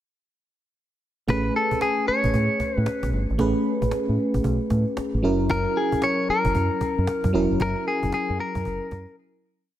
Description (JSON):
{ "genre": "R&B, new jack swing", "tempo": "114 BPM", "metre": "4/4", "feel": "swing 63% on 16ths", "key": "unclear", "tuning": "A4 = 439 Hz", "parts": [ { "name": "clean electric guitar", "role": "melody", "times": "1.3-9.1 s", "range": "G#4 to C#5", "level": "-25 LUFS", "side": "left 2 dB", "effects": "digital delay" }, { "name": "FM electric piano", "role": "accompaniment", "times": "1.3-9.7 s", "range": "F#3 to B4", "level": "-25 LUFS", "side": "right 1 dB", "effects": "chorus" }, { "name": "deep dub fingered electric bass", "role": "bass", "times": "1.3-9.0 s", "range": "E1 to A2", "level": "-25 LUFS", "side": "equal", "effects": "none" }, { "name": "cajon", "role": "drums", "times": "1.3-9.1 s", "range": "none", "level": "-32 LUFS", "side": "equal", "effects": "none" } ], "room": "light reverb", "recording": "none", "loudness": "-21 LUFS", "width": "side -12 dB against mid", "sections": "1.3-9.7 pre-chorus", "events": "fade-out 7.6-9.7; break 9.2-9.7", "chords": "1.3 Amaj9; 5.2 F#7" }